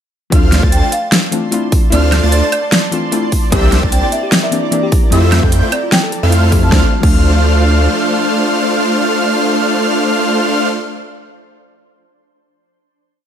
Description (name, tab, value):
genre	future bass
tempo	150 BPM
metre	4/4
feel	swing 55% on 16ths, half-time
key	D minor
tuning	A4 = 440 Hz
part	soft round pluck	accompaniment	0.3-10.7 s	E3 to G4	-19 LUFS	left 4 dB	chorus, sidechain pumping, digital delay
part	shimmering ambient pad	sustained chords	1.1-10.4 s	F3 to C6	-25 LUFS	right 2 dB	chorus, built-in reverb, sidechain pumping
part	airy dreamy lead	arpeggios	0.3-10.7 s	E6 to A6	-22 LUFS	equal	chorus, sidechain pumping
part	supersaw chords	riff	0.3-10.7 s	A3 to A5	-16 LUFS	equal	sidechain pumping, digital delay
part	saturated sub bass	bass	0.3-7.9 s	C2 to F2	-12 LUFS	equal	sidechain pumping
part	big-room dance drum kit	drums	0.3-7.1 s	crash cymbal, hi-hat, snare drum, woodblock	-16 LUFS	equal	overdrive
part	electronic kick drum	drums	0.3-7.1 s	none	-13 LUFS	equal	overdrive
part	marimba with medium mallets	melody	0.7-6.7 s	D5 to A5	-22 LUFS	right 2 dB	sidechain pumping, digital delay
part	thumb-piano-like synth pluck	arpeggios	3.5-7.1 s	C4 to C5	-24 LUFS	left 3 dB	chorus, sidechain pumping, digital delay
room	light reverb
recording	none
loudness	-10 LUFS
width	side -9 dB against mid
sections	0.3-6.7 drop; 6.7-9.9 final chord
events	drop 0.3-6.7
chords	0.3 Dm7; 3.5 C9; 5.1 Fmaj7; 6.7 Dm7